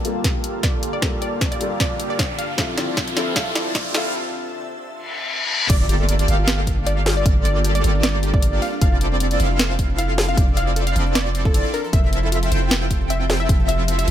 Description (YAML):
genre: future bass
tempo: 154 BPM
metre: 4/4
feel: swing 54% on 16ths, half-time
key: unclear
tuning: A4 = 440 Hz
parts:
  - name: felt-muted upright piano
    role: accompaniment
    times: 0.0-5.7 s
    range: F3 to E5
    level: -30 LUFS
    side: left 3 dB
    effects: sidechain pumping, tape echo
  - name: shimmering ambient pad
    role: sustained chords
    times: 0.0-14.1 s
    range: F2 to A5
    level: -32 LUFS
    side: left 1 dB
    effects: chorus, built-in reverb, sidechain pumping
  - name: soft supersaw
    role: riff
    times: 0.0-14.1 s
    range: Bb3 to G5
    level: -27 LUFS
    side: equal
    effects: wide subtle chorus, sidechain pumping, low-pass filter
  - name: trap drum kit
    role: drums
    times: 0.0-14.1 s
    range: crash cymbal, hi-hat, snare drum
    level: -23 LUFS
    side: equal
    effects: high-pass filter on snare, high-pass filter on hats, high-pass filter on cymbals
  - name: riser, reverse cymbal and impact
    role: sound effects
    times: 1.8-7.3 s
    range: none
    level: -27 LUFS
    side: left 2 dB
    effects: none
  - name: electronic kick drum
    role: drums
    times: 0.2-13.6 s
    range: none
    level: -20 LUFS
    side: equal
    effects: none
  - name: wide unison pluck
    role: melody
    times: 0.6-14.1 s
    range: A4 to F5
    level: -28 LUFS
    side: moving between left 4 dB and right 4 dB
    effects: auto-pan, sidechain pumping, tape echo
  - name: airy dreamy lead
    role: arpeggios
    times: 5.7-14.1 s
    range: D5 to G5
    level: -31 LUFS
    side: equal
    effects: chorus, sidechain pumping
  - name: wide unison pluck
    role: arpeggios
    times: 5.7-14.1 s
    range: C4 to C5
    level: -33 LUFS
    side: left 1 dB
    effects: sidechain pumping, tape echo
  - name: long sustained 808-style bass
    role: bass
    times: 5.7-14.1 s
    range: F1 to G1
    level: -21 LUFS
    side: equal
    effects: sidechain pumping
room: digital ambience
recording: high-pass filter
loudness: -17 LUFS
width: side -11 dB against mid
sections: 0.0-5.7 A section; 5.7-14.1 B section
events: build-up 0.0-5.7; drum fill 0.0-4.1; filter sweep on supersaw synth 0.0-5.7; filter sweep 0.0-5.7; riser 1.8-4.1; break 4.1-5.7; reverse cymbal 5.0-5.7; drop 5.7-14.1; impact 5.7-7.3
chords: 0.0 Gm9; 2.4 Dm9/F; 5.7 Gm9; 8.6 Dm9/F; 11.9 Fmaj7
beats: 0.24 0.63 | 1.02 1.41 1.80 2.19 | 2.58 2.97 3.36 3.75 | 4.14 4.53 4.92 5.31 | 5.70 6.09 6.48 6.87 | 7.26 7.65 8.04 8.43 | 8.81 9.21 9.59 9.98 | 10.37 10.76 11.15 11.54 | 11.93 12.32 12.71 13.10 | 13.49 13.88